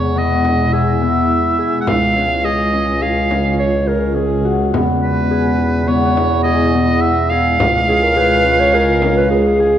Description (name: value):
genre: contemporary instrumental, chamber music in an uneven meter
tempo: 105 BPM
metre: 5/4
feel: straight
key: unclear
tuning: A4 = 441 Hz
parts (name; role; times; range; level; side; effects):
- bright oboe; melody; 0.0-9.8 s; B4 to F#5; -17 LUFS; right 2 dB; none
- ethereal airy pad; sustained chords; 0.0-9.8 s; B2 to E#4; -22 LUFS; right 2 dB; ensemble chorus, built-in reverb
- concert harp; arpeggios; 0.0-9.8 s; B3 to G#4; -20 LUFS; left 4 dB; none
- mellow bass clarinet; bass; 0.0-9.8 s; C#2 to E2; -18 LUFS; equal; none
- frame drum; percussion; 0.4-9.4 s; none; -25 LUFS; left 2 dB; none
- mellow clarinet; second line; 3.6-9.8 s; G#4 to C#5; -17 LUFS; right 2 dB; none
room: wet concert hall reverb, RT60 2.4 s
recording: worn, warbling old tape, cassette tape, warbly pitch drift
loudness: -12 LUFS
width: side -10 dB against mid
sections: 0.0-9.8 A section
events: none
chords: 0.0 E; 1.9 C#; 4.7 E; 7.6 C#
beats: 0.16 0.73 1.30 | 1.88 2.45 3.02 3.60 4.17 | 4.74 5.31 5.88 6.45 7.02 | 7.59 8.16 8.73 9.30